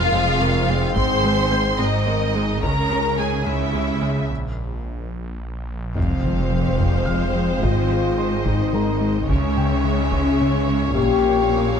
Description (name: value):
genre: cinematic, hybrid orchestral and electronic film score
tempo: 72 BPM (dotted quarters)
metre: 6/8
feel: straight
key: F minor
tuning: A4 = 441 Hz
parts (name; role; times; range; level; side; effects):
- warm studio violin section; melody; 0.0-11.8 s; Eb5 to C6; -27 LUFS; equal; none
- warm symphonic violin section; second line; 0.0-11.8 s; Eb4 to Db5; -27 LUFS; left 2 dB; none
- clear trombone section; sustained chords; 0.0-11.8 s; F2 to Db4; -30 LUFS; right 6 dB; none
- mellow French horn section; sustained chords; 0.0-11.8 s; C4 to C5; -24 LUFS; left 8 dB; none
- phased detuned saw bass; bass; 0.0-11.8 s; F1 to Db2; -28 LUFS; equal; phaser
- rich symphonic cello section; bass; 0.0-11.8 s; F2 to Db3; -27 LUFS; right 2 dB; none
- warm symphonic double bass section; bass; 0.0-11.8 s; F1 to Db2; -27 LUFS; right 4 dB; none
- felt-muted upright piano; texture; 0.0-4.3, 7.1-11.8 s; Bb4 to G6; -36 LUFS; equal; ping-pong delay
- rich symphonic viola section; accompaniment; 0.1-11.8 s; Ab3 to Db4; -32 LUFS; right 3 dB; none
- smooth gliding synth bass; riff; 0.1-11.7 s; Db2 to Bb3; -26 LUFS; left 2 dB; none
- taiko ensemble; drums; 1.0-3.1, 6.0-11.5 s; none; -26 LUFS; equal; none
- sub drop; sound effects; 6.0-7.6 s; none; -28 LUFS; right 1 dB; none
room: light reverb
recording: none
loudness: -18 LUFS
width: side -7 dB against mid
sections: 0.0-6.0 A section; 6.0-11.8 B section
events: break 4.3-6.0; impact 6.0-7.6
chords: 0.0 Fm; 1.0 Ab; 2.6 Dbm; 4.3 N.C.; 6.0 Fm; 7.6 Ab; 9.3 Dbm; 11.0 Bbm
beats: 0.13 | 0.96 1.80 | 2.63 3.46 | 4.30 5.13 | 5.96 6.80 | 7.63 8.46 | 9.30 10.13 | 10.96 11.80